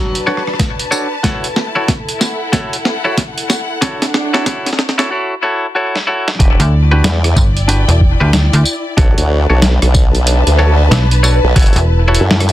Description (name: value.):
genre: glitch hop.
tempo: 93 BPM.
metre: 4/4.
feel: swing 62% on 16ths.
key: E dorian.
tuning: A4 = 443 Hz.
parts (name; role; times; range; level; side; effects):
warm symphonic string section; texture; 0.0-12.5 s; D4 to A5; -21 LUFS; left 1 dB; sidechain pumping.
boom bap sampler-style drum kit; drums; 0.2-12.5 s; hi-hat, rim click, snare drum, tambourine; -16 LUFS; equal; none.
semi-hollow electric guitar; stabs; 0.3-12.2 s; D4 to C#5; -18 LUFS; left 1 dB; sidechain pumping, ping-pong delay.
electronic kick drum; drums; 0.6-11.7 s; none; -13 LUFS; equal; none.
formant-sweep wobble bass; bass; 6.4-12.5 s; E1 to F#2; -12 LUFS; equal; chorus, tube saturation.
slap-like FM bass; bass; 6.6-12.2 s; E1 to D2; -11 LUFS; equal; none.
room: light reverb.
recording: dense, heavily limited modern master, high-pass filter.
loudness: -11 LUFS.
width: side -14 dB against mid.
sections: 0.0-6.4 A section; 6.4-12.5 B section.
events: build-up 0.0-6.4; drum fill 0.0-5.1, 5.8-6.4; drop 6.4-12.5.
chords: 0.0 Bm7; 1.2 F#m7; 6.4 Em7; 9.0 Bm7; 11.6 F#m7.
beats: 0.59 | 1.24 1.88 2.53 3.17 | 3.82 4.46 5.11 5.75 | 6.40 7.04 7.69 8.33 | 8.98 9.62 10.27 10.91 | 11.56 12.20.